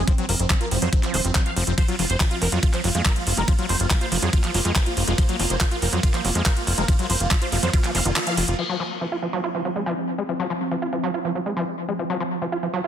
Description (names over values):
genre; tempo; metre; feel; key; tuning
psychedelic trance; 141 BPM; 4/4; straight; unclear; A4 = 439 Hz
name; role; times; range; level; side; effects
dense compressed supersaw; melody; 0.0-8.5 s; C4 to F5; -29 LUFS; right 1 dB; phaser, vintage 12-bit sampler grit, sidechain pumping, digital delay
formant-sweep wobble bass; second line; 0.0-7.8 s; C4 to F4; -42 LUFS; right 4 dB; none
pulsing gated texture; sustained chords; 0.0-12.9 s; F3 to F4; -30 LUFS; equal; chorus, built-in reverb, sidechain pumping
plucky analog bass; bass; 0.0-8.5 s; Eb1 to F2; -23 LUFS; equal; none
overdriven acid bass; riff; 0.1-12.9 s; Eb3 to F4; -27 LUFS; moving between left 8 dB and right 6 dB; distortion, auto-pan, sidechain pumping, digital delay
electronic kick drum; drums; 0.1-7.8 s; none; -20 LUFS; equal; none
garage drum kit; drums; 0.1-8.7 s; crash cymbal, handclaps, hi-hat, ride cymbal; -25 LUFS; right 1 dB; low-pass filter on hats, low-pass filter on snare, low-pass filter on cymbals
room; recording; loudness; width
light reverb, digital ambience; dense, heavily limited modern master; -20 LUFS; side -9 dB against mid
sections
0.0-8.6 A section; 8.6-12.9 B section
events
drop 0.0-8.6; kick drops out 8.2-8.6; band accent 8.2; filter sweep on synth texture 8.6-12.9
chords
0.0 F5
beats
| 0.07 0.50 0.93 1.35 | 1.78 2.20 2.63 3.05 | 3.48 3.90 4.33 4.76 | 5.18 5.61 6.03 6.46 | 6.88 7.31 7.74 8.16 | 8.59 9.01 9.44 9.86 | 10.29 10.71 11.14 11.56 | 11.99 12.42 12.84